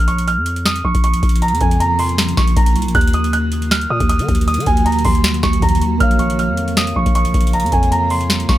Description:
hip hop, trap; 157 BPM; 4/4; half-time; Bb minor; A4 = 435 Hz
dark concert grand piano; melody; 0.0-8.6 s; Ab5 to Gb6; -19 LUFS; right 2 dB; low-pass filter, tape echo
granular cloud pad; sustained chords; 1.2-8.6 s; Db3 to Gb4; -24 LUFS; right 1 dB; built-in reverb
growling 808-style bass; bass; 0.0-8.6 s; Bb1 to Eb3; -18 LUFS; equal
booming analog drum machine; drums; 0.1-8.6 s; hi-hat, kick drum, snare drum; -17 LUFS; equal
muted felt-like synth keys; accompaniment; 6.0-8.6 s; Bb3 to F5; -24 LUFS; right 2 dB; chorus, low-pass filter
light reverb; -13 LUFS; side -14 dB against mid
0.0-8.6 A section
0.0 Bbm; 2.9 Ebm; 6.0 Bbm
0.27 0.66 1.04 | 1.42 1.80 2.18 2.56 | 2.95 3.33 3.71 4.09 | 4.48 4.86 5.24 5.62 | 6.00 6.39 6.77 7.15 | 7.53 7.92 8.30

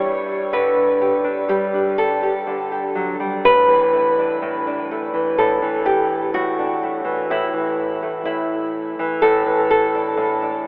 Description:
folk, solo fingerstyle acoustic guitar; 62 BPM; 4/4; straight; A4 = 439 Hz
nylon-string guitar; solo; 0.0-10.7 s; A2 to C#5; -19 LUFS; equal; analog delay
wet huge ambient reverb, RT60 7.6 s; dreamy mix soaked in reverb, telephone sound; -19 LUFS; mono
0.0-10.7 A section
0.0 G; 3.4 Asus4
0.52 1.49 2.46 | 3.44 4.41 5.37 6.34 | 7.30 8.26 9.23 10.18

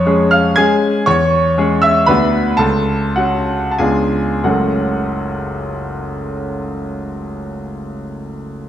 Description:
classical, romantic triple-time dance for piano with dotted rhythms; 86-124 BPM; 3/4; rubato; F# minor; A4 = 440 Hz
bright grand piano; solo; 0.0-8.7 s; F#1 to G#6; -14 LUFS; equal
wet recital hall reverb, RT60 1.9 s; minimal, uncompressed stereo recording; -13 LUFS; side -11 dB against mid
0.0-4.4 A section; 4.4-8.4 B section
slowing down 0.3-4.4
0.0 C#/E#; 1.1 C#m/E; 2.1 Bm/D; 2.6 F#m/C#; 3.8 C#7b9; 4.4 F#m
0.05 0.56 | 1.05 1.56 2.08 | 2.59 3.16 3.79 | 4.45 5.09 5.75 | 6.38 7.05 7.71

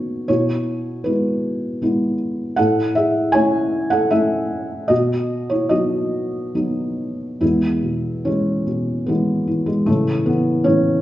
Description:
classical, lyrical solo piano; 69-79 BPM; 3/4; rubato; E major; A4 = 437 Hz
felt-muted upright piano; solo; 0.0-11.0 s; E2 to G#5; -17 LUFS; equal
wet recital hall reverb, RT60 1.4 s; recorded in a church or concert hall, nothing above 7.6 kHz; -17 LUFS; side -14 dB against mid
0.0-7.4 A section; 7.4-11.0 B section
0.3 E/B; 2.6 A; 4.9 B; 7.4 E; 9.9 A
| 0.28 1.05 1.81 | 2.58 3.34 4.12 | 4.91 5.71 6.56 | 7.42 8.26 9.08 | 9.88 10.65

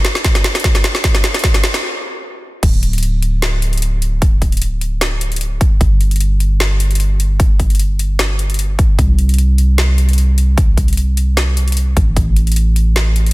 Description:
future bass; 151 BPM; 4/4; swing 54% on 16ths, half-time; A4 = 438 Hz
trap drum kit; drums; 0.0-13.3 s; crash cymbal, hi-hat, snare drum; -19 LUFS; equal; studio reverb
electronic kick drum; drums; 0.2-12.2 s; -13 LUFS; equal; studio reverb
long sustained 808-style bass; bass; 2.6-13.3 s; D1 to C2; -14 LUFS; equal; sidechain pumping
little or no reverb; dense, heavily limited modern master; -12 LUFS; side -20 dB against mid
0.0-2.6 A section; 2.6-13.3 B section
build-up 0.0-2.6; drum fill 0.0-1.8; stop 1.8-2.6; drop 2.6-13.3
0.24 0.64 | 1.04 1.44 1.83 2.23 | 2.63 3.03 3.42 3.82 | 4.22 4.62 5.01 5.41 | 5.81 6.21 6.60 7.00 | 7.40 7.79 8.19 8.59 | 8.99 9.38 9.78 10.18 | 10.58 10.97 11.37 11.77 | 12.16 12.56 12.96

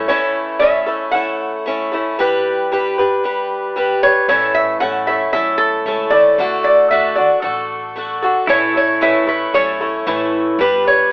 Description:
honky-tonk and classic country; 114 BPM; 4/4; straight; A mixolydian; A4 = 439 Hz
picked swing-style acoustic guitar; accompaniment; 0.0-11.1 s; A2 to B4; -17 LUFS; equal
pedal steel guitar; sustained chords; 0.0-0.1, 8.5-10.6 s; E4 to C#5; -23 LUFS; equal
upright bass; bass; 0.0-0.1, 4.3-11.1 s; G1 to D2; -38 LUFS; equal
lap resonator guitar; second line; 0.1-11.1 s; A4 to F#5; -14 LUFS; equal
moderate studio reverb, RT60 0.9 s; telephone sound; -13 LUFS; side -25 dB against mid
0.1-8.5 A section; 8.5-11.1 B section
resonator guitar played with a steel bar solo 0.1-8.5, 8.5-11.1
0.1 A; 2.2 G; 4.3 A; 6.4 D; 8.5 A; 10.6 G
| 0.08 0.61 1.14 1.66 | 2.19 2.71 3.24 3.76 | 4.29 4.81 5.34 5.86 | 6.39 6.91 7.44 7.96 | 8.49 9.01 9.54 10.06 | 10.59 11.11

